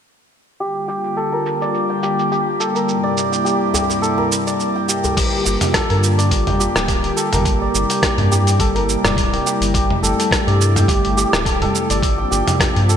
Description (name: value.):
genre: organic downtempo.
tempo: 105 BPM.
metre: 4/4.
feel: swing 55% on 16ths.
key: G dorian.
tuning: A4 = 441 Hz.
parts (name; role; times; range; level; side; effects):
warm analog pad; sustained chords; 0.6-13.0 s; G2 to G4; -22 LUFS; left 1 dB; chorus, sidechain pumping, shimmer reverb.
santur; arpeggios; 0.6-13.0 s; G4 to G5; -20 LUFS; equal; low-pass filter, ping-pong delay, shimmer reverb.
dusty soul sampler-style drum kit; drums; 0.6-13.0 s; cabasa, crash cymbal, hi-hat, rim click, toms; -20 LUFS; right 1 dB; low-pass filter on perc, low-pass filter on hats, low-pass filter on cymbals, low-pass filter on toms, low-pass filter on snare, low-pass filter on room, gated reverb.
djembe; percussion; 3.7-5.1 s; none; -27 LUFS; left 2 dB; none.
electronic kick drum; drums; 5.2-12.7 s; none; -21 LUFS; equal; none.
round analog bass; bass; 5.5-13.0 s; D1 to G2; -19 LUFS; equal; none.
room: moderate lush hall reverb, RT60 2.6 s.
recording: bright 1980s-style digital production.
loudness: -15 LUFS.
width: side -8 dB against mid.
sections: 0.6-5.2 A section; 5.2-13.0 B section.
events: filter sweep on drum 0.6-5.2; filter sweep on santur 0.6-5.2.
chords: 0.6 Gm7; 2.9 C7/G; 5.2 Gm7; 7.5 C7/G; 12.0 Bbadd9/G.